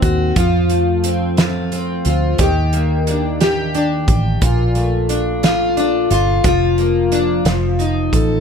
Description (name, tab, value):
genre	six-eight pop ballad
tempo	59 BPM (dotted quarters)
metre	6/8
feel	straight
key	Bb major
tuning	A4 = 441 Hz
part	picked plugged-in steel-string acoustic guitar	accompaniment	0.0-8.4 s	Bb2 to A4	-16 LUFS	left 1 dB	double-tracked left and right
part	vintage muted fingered electric bass	bass	0.0-8.4 s	F1 to F2	-19 LUFS	equal	none
part	loose indie drum kit	drums	0.0-8.3 s	hi-hat, kick drum, snare drum	-19 LUFS	right 1 dB	none
room	little or no reverb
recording	none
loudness	-14 LUFS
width	side -6 dB against mid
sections	0.0-8.4 A section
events	none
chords	0.4 F; 2.4 Ebmaj7; 4.4 Bbmaj7; 6.4 Bb/F; 7.5 F7